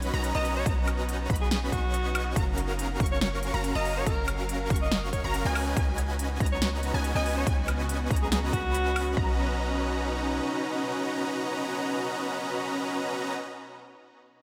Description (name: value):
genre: future bass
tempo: 141 BPM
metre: 4/4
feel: swing 54% on 16ths, half-time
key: B lydian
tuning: A4 = 440 Hz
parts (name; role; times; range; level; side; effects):
- shimmering ambient pad; sustained chords; 0.0-13.3 s; B2 to E#5; -41 LUFS; equal; chorus, built-in reverb, sidechain pumping
- unison pluck; arpeggios; 0.0-13.4 s; G#5 to C#6; -41 LUFS; equal; analog chorus, sidechain pumping, delay
- supersaw chords; riff; 0.0-13.3 s; C#4 to C#6; -34 LUFS; equal; sidechain pumping, delay
- warm 808-style bass; bass; 0.0-10.4 s; F#1 to C#2; -33 LUFS; equal; sidechain pumping
- big-room dance drum kit; drums; 0.0-9.1 s; hi-hat, snare drum, woodblock; -35 LUFS; equal; overdrive
- clear alto saxophone; melody; 0.3-9.1 s; F#4 to D#5; -36 LUFS; equal; sidechain pumping, analog delay
- electronic kick drum; drums; 0.7-9.3 s; none; -31 LUFS; equal; overdrive
room: moderate lush hall reverb, RT60 2.1 s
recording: dreamy mix soaked in reverb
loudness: -28 LUFS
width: mono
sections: 0.0-9.2 A section; 9.2-12.6 B section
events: drop 0.0-9.2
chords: 0.0 Bmaj9; 2.4 F#maj7; 5.6 C#9sus4; 9.2 Bmaj9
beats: 0.23 | 0.66 1.08 1.51 1.94 | 2.36 2.79 3.21 3.64 | 4.06 4.49 4.92 5.34 | 5.77 6.19 6.62 7.04 | 7.47 7.89 8.32 8.74 | 9.17 9.60 10.02 10.45 | 10.87 11.30 11.72 12.15